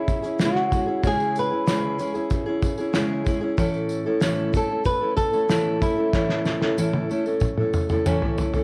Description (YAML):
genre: acoustic pop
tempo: 94 BPM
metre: 4/4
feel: straight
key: unclear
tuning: A4 = 441 Hz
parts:
  - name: flamenco guitar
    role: melody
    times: 0.0-8.6 s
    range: C#4 to B4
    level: -28 LUFS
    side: equal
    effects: tape echo
  - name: fingerpicked steel-string acoustic guitar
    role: accompaniment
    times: 0.0-8.6 s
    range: A2 to A4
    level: -26 LUFS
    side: equal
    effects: none
  - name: cloth-damped thuddy drum kit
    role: drums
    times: 0.1-8.6 s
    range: kick drum, shaker, snare drum, toms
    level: -27 LUFS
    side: equal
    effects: none
  - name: tambourine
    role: percussion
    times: 0.1-8.6 s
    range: none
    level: -46 LUFS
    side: equal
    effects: none
room: moderate studio reverb, RT60 0.7 s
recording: worn, warbling old tape, cassette tape, warbly pitch drift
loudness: -23 LUFS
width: mono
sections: 0.0-8.6 A section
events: drum fill 6.1-8.6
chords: 0.0 C#m; 3.6 A